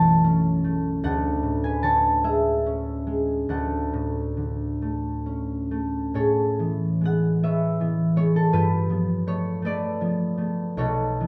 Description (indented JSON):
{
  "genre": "classical, solo harp piece",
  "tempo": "43-56 BPM (dotted quarters)",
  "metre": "6/8",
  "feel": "rubato",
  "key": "A major",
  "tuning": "A4 = 441 Hz",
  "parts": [
    { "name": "concert harp", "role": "solo", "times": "0.0-11.3 s", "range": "B1 to D6", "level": "-24 LUFS", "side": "equal", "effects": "none" }
  ],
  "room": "wet recital hall reverb, RT60 1.5 s",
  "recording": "dark, warm production",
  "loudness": "-24 LUFS",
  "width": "mono",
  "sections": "0.0-6.1 A section; 6.1-11.3 B section",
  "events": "none",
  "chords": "0.0 Bm11; 1.0 Dmaj7#11; 3.5 Dmaj7; 6.1 Amaj9; 8.5 G9",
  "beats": "| 1.02 2.22 | 3.48 4.80 | 6.13 7.43 | 8.53 9.63 | 10.77"
}